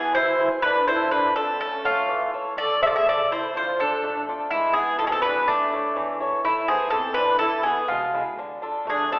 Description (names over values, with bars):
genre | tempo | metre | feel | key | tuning
greek folk, Greek bouzouki band | 124 BPM | 2/4 | straight | unclear | A4 = 440 Hz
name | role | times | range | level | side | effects
Greek bouzouki | melody | 0.0-9.2 s | D4 to E5 | -21 LUFS | equal | none
musette accordion | second line | 0.0-9.2 s | G#3 to A4 | -30 LUFS | equal | none
picked swing-style acoustic guitar | accompaniment | 0.0-9.2 s | B2 to E5 | -28 LUFS | equal | none
upright bass | bass | 2.6-9.2 s | E1 to E2 | -50 LUFS | equal | none
room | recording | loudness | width
wet recital hall reverb, RT60 1.5 s | recorded in a church or concert hall, telephone sound | -20 LUFS | side -23 dB against mid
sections
0.0-6.4 A section; 6.4-9.2 A section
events
none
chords
0.0 E; 0.6 Dm; 1.6 A; 2.6 Am; 3.5 Dm; 4.5 E; 5.5 A; 6.4 Am; 7.4 E; 8.4 Dm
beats
0.14 | 0.63 1.11 | 1.60 2.09 | 2.57 3.06 | 3.54 4.03 | 4.51 5.00 | 5.48 5.96 | 6.45 6.93 | 7.41 7.90 | 8.38 8.86